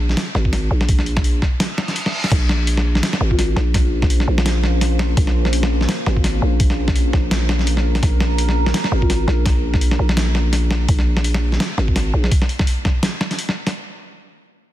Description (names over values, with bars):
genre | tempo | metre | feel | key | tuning
half-time drum and bass | 168 BPM | 4/4 | swing 57% on 16ths, half-time | Bb minor | A4 = 441 Hz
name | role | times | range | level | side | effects
growling 808-style bass | bass | 0.0-12.3 s | Ab1 to Bb1 | -18 LUFS | equal | none
boom bap sampler-style drum kit | drums | 0.1-13.7 s | crash cymbal, hi-hat, snare drum | -22 LUFS | equal | soft clipping on snare
electronic kick drum | drums | 0.5-12.9 s | none | -18 LUFS | equal | none
reverse cymbal | sound effects | 1.7-2.3 s | none | -26 LUFS | right 1 dB | none
deep dark ambient pad | sustained chords | 3.7-10.8 s | Bb3 to C5 | -27 LUFS | equal | chorus, built-in reverb, sidechain pumping
marimba with soft mallets | melody | 3.3-3.6, 9.0-9.3 s | F4 | -29 LUFS | left 2 dB | ping-pong delay
room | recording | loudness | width
little or no reverb | dense, heavily limited modern master | -16 LUFS | side -14 dB against mid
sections
0.0-13.7 A section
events
drop 0.0-13.7; reverse cymbal 1.7-2.3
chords
0.0 Bbmadd9